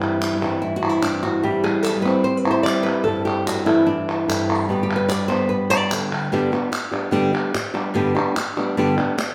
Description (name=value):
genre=flamenco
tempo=147 BPM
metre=4/4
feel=straight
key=G major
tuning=A4 = 440 Hz
part: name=flamenco guitar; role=melody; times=0.0-9.2 s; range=G2 to D5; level=-22 LUFS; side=equal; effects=none
part: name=flamenco guitar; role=stabs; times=0.0-6.3 s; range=G2 to A4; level=-29 LUFS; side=equal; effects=none
part: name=palmas hand claps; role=percussion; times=0.0-9.3 s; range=none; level=-28 LUFS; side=equal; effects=none
room=wet large studio reverb, RT60 1.2 s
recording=band playing live in one room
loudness=-21 LUFS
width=mono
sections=0.0-6.3 A section; 6.3-9.3 B section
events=nylon-string guitar solo 0.0-6.3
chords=0.0 C/G; 3.1 Am7/G; 4.7 G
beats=0.21 0.62 1.03 | 1.44 1.84 2.25 2.66 | 3.07 3.47 3.88 4.29 | 4.70 5.10 5.51 5.92 | 6.32 6.73 7.14 7.54 | 7.95 8.36 8.77 9.17